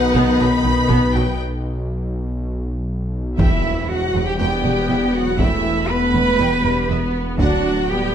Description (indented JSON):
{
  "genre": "cinematic, hybrid orchestral and electronic film score",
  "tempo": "120 BPM",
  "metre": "4/4",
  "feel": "straight",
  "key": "E minor from 3.4 s",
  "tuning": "A4 = 440 Hz",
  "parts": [
    { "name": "warm symphonic violin section", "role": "melody", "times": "0.0-7.6 s", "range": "B4 to B5", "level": "-27 LUFS", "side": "left 2 dB", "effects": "none" },
    { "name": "warm symphonic violin section", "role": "second line", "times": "0.0-8.1 s", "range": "B4 to B5", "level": "-26 LUFS", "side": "left 2 dB", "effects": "none" },
    { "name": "rich symphonic viola section", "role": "accompaniment", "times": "0.0-8.1 s", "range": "D#3 to D#4", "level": "-23 LUFS", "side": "equal", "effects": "none" },
    { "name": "dark French horn section", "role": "sustained chords", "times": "0.0-8.1 s", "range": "E3 to B4", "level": "-23 LUFS", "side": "left 4 dB", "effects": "none" },
    { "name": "warm trombone section", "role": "sustained chords", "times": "0.0-1.4 s", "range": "B2 to D#3", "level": "-26 LUFS", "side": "right 4 dB", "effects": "none" },
    { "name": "dark detuned saw bass", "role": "bass", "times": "0.0-8.1 s", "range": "D1 to B1", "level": "-24 LUFS", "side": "equal", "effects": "none" },
    { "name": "warm symphonic double bass section", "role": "bass", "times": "0.1-7.5 s", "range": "E1 to D2", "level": "-26 LUFS", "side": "right 3 dB", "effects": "none" },
    { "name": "taiko ensemble", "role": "drums", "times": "0.1-7.9 s", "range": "none", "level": "-23 LUFS", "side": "equal", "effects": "none" },
    { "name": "warm studio cello section", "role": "bass", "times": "0.2-7.5 s", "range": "D2 to B2", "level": "-25 LUFS", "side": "right 2 dB", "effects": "none" },
    { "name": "rich cello", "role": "melody", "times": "3.4-8.1 s", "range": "E4 to B4", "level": "-22 LUFS", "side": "right 6 dB", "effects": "ping-pong delay" },
    { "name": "impact", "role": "sound effects", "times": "3.4-5.4 s", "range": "none", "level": "-27 LUFS", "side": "equal", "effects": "none" }
  ],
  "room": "wet recital hall reverb, RT60 1.4 s",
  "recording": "none",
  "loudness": "-16 LUFS",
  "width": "side -9 dB against mid",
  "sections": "0.0-3.4 A section; 3.4-8.1 B section",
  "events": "break 1.4-3.4; impact 3.4-5.4",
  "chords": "0.0 B; 3.4 Em; 7.4 D",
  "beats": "0.39 0.89 | 1.39 1.89 2.39 2.89 | 3.39 3.89 4.39 4.89 | 5.39 5.89 6.39 6.89 | 7.39 7.89"
}